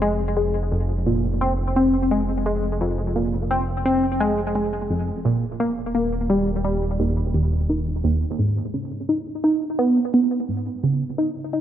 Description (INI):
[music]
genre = ambient, sequencer-driven space music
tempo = 86 BPM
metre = 4/4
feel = straight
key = F minor, G# minor from 8.4 s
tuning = A4 = 443 Hz
[part]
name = tight sequenced synth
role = riff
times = 0.0-11.6 s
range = Eb2 to D#4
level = -20 LUFS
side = equal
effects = chorus, tape echo
[part]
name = fat analog bass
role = bass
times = 0.0-8.4 s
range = Eb1 to F1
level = -26 LUFS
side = equal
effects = none
[sound]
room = moderate plate reverb, RT60 3.4 s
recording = cassette tape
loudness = -20 LUFS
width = side -10 dB against mid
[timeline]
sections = 0.0-8.4 A section; 8.4-11.6 B section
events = none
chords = 0.0 Fm; 5.6 Eb; 8.4 G#m